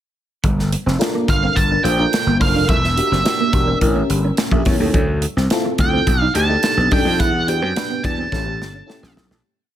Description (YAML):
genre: polished 1980s jazz-funk pop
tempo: 106 BPM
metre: 4/4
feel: straight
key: unclear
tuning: A4 = 440 Hz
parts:
  - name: mellow electric guitar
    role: riff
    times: 0.4-9.4 s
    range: G3 to E4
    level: -25 LUFS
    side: right 3 dB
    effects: ensemble chorus
  - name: gritty slap bass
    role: bass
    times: 0.4-9.4 s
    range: E1 to F#2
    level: -20 LUFS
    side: equal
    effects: overdrive
  - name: modern studio drum kit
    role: drums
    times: 0.4-9.4 s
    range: hi-hat, kick drum, snare drum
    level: -20 LUFS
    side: equal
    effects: none
  - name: congas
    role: percussion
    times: 0.4-9.4 s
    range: none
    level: -33 LUFS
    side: equal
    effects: none
  - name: FM electric piano with soft pad layer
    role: accompaniment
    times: 1.0-9.5 s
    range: C4 to E5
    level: -23 LUFS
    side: left 2 dB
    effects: analog chorus
  - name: octave-fuzz lead guitar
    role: melody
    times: 1.3-9.1 s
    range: E5 to A5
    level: -20 LUFS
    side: right 3 dB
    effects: distortion
room: studio reverb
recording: none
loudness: -15 LUFS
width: side -11 dB against mid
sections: 0.4-9.4 pre-chorus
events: fade-out 7.2-9.4; drum fill 8.3-9.4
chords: 0.4 Gm7; 2.7 Em7b5; 3.8 A7b9; 4.9 Dm9; 6.1 B7alt; 7.2 Em9; 8.3 A7